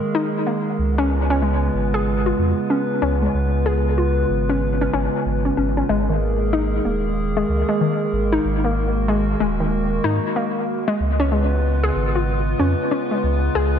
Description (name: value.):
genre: IDM.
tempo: 94 BPM.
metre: 4/4.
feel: swing 62% on 16ths.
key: G# dorian.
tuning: A4 = 440 Hz.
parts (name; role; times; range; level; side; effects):
warbly tape-like pad; sustained chords; 0.0-13.8 s; C#3 to B4; -22 LUFS; equal; chorus, built-in reverb, vintage 12-bit sampler grit.
warbly dusty pluck; arpeggios; 0.1-13.7 s; D#3 to G#4; -23 LUFS; left 2 dB; chorus, diffuse ambient delay.
warm sub bass; bass; 0.8-13.8 s; D#1 to G#2; -22 LUFS; equal; none.
room: light reverb, digital ambience.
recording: none.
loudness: -18 LUFS.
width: side -8 dB against mid.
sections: 0.0-5.9 A section; 5.9-13.8 B section.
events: none.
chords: 0.0 G#sus2; 0.8 C#7; 5.9 G#sus2; 11.0 C#7.